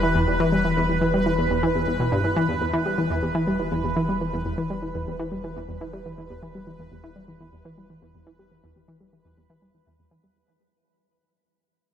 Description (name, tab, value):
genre	ambient, sequencer-driven space music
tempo	122 BPM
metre	4/4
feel	straight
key	E minor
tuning	A4 = 440 Hz
part	analog pluck	riff	0.0-10.3 s	E2 to G3	-24 LUFS	left 1 dB	chorus, tape echo, shimmer reverb
part	round analog bass	bass	0.0-10.3 s	E1	-34 LUFS	equal	none
part	bubbling stepped-filter texture	texture	0.0-10.4 s	B4	-28 LUFS	right 2 dB	chorus, built-in reverb, shimmer reverb
room	wet huge ambient reverb, RT60 7.6 s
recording	none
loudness	-21 LUFS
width	side -9 dB against mid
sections	0.0-10.4 A section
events	fade-out on analog synth bass 0.0-10.4; fade-out 0.0-10.4; filter sweep on synth arpeggio sound 0.0-10.4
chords	0.0 Em